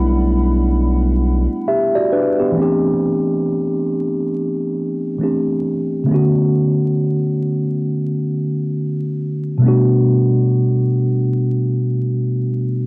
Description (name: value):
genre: lo-fi hip hop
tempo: 68 BPM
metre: 4/4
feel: swing 62% on 16ths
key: unclear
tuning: A4 = 444 Hz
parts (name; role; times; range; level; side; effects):
- mellow tine electric piano; accompaniment; 0.0-12.9 s; B2 to E5; -15 LUFS; equal; slow stereo tremolo, cassette tape
- hollow soft pad; sustained chords; 0.0-2.5 s; G3 to B5; -31 LUFS; equal; chorus, cassette tape
- saturated sub bass; bass; 0.0-1.5 s; B1; -15 LUFS; equal; none
room: wet booth ambience, RT60 0.3 s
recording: home recording on cassette, vinyl crackle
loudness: -15 LUFS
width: side -28 dB against mid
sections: 0.0-2.6 A section; 2.6-12.9 B section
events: none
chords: 0.0 Gmaj7; 2.6 C69; 6.1 Bm9; 9.6 Gmaj7/B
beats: 0.80 1.68 | 2.56 3.44 4.33 5.21 | 6.09 6.97 7.85 8.74 | 9.62 10.50 11.38 12.27